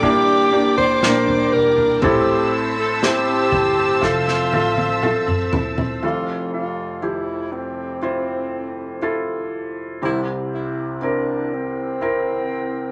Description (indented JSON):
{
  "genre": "pop ballad",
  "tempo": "60 BPM",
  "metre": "4/4",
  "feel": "straight",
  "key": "F major",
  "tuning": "A4 = 442 Hz",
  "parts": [
    { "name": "breathy alto saxophone", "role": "melody", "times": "0.0-12.9 s", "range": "C4 to C5", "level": "-24 LUFS", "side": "equal", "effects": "none" },
    { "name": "felt-muted upright piano", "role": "accompaniment", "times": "0.0-12.9 s", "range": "F1 to E5", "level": "-24 LUFS", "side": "equal", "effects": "none" },
    { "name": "rich studio string section", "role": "sustained chords", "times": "0.0-6.0 s", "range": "Bb3 to E6", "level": "-26 LUFS", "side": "equal", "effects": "none" },
    { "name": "direct-recorded clean electric guitar", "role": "arpeggios", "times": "0.0-6.6 s", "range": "A2 to G4", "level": "-32 LUFS", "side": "equal", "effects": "none" },
    { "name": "vintage muted fingered electric bass", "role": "bass", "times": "0.0-6.0 s", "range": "E1 to Bb1", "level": "-34 LUFS", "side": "equal", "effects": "none" },
    { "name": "unplugged drum kit", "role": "drums", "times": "0.0-6.0 s", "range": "kick drum, snare drum, toms", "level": "-26 LUFS", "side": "equal", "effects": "none" }
  ],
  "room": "wet studio reverb, RT60 0.6 s",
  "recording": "none",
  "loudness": "-20 LUFS",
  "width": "mono",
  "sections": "0.0-6.0 A section; 6.0-12.9 B section",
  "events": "drum fill 4.0-6.0",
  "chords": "0.0 Gm; 2.0 Am; 4.0 Fmaj7; 10.0 C"
}